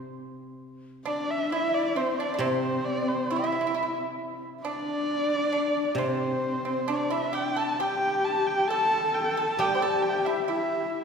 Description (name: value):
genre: chinese traditional, Chinese chamber ensemble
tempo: 67 BPM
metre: 2/4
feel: rubato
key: C gong mode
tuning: A4 = 439 Hz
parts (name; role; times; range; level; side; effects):
- guzheng; accompaniment; 0.0-11.0 s; C3 to G3; -35 LUFS; right 2 dB; none
- dark erhu; melody; 1.1-11.0 s; C5 to A5; -29 LUFS; right 1 dB; none
- breathy mellow low xiao; second line; 1.1-11.0 s; C5 to A5; -32 LUFS; left 2 dB; none
- pipa; second line; 1.1-11.0 s; C4 to C5; -33 LUFS; right 4 dB; none
- warm horsehead fiddle; second line; 1.1-11.0 s; C4 to A4; -30 LUFS; left 2 dB; none
room: wet concert hall reverb, RT60 2.6 s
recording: heard from further back in the room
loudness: -24 LUFS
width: side -6 dB against mid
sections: 0.6-11.0 A section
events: none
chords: none